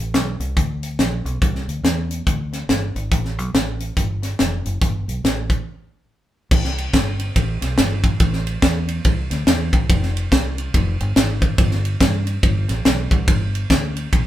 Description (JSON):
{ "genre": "uptempo gospel", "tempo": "142 BPM", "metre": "4/4", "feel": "swing 62% on 8ths", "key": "C major", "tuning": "A4 = 443 Hz", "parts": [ { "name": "fingered electric bass", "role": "bass", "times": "0.0-14.3 s", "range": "F1 to G2", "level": "-22 LUFS", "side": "equal", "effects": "none" }, { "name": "tight funk drum kit", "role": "drums", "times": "0.1-14.2 s", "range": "crash cymbal, hi-hat, kick drum, ride cymbal, snare drum", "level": "-18 LUFS", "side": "equal", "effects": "none" } ], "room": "light reverb", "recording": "band playing live in one room", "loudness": "-17 LUFS", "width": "side -13 dB against mid", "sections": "0.0-6.5 A section; 6.5-14.3 B section", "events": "break 5.7-6.5", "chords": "none" }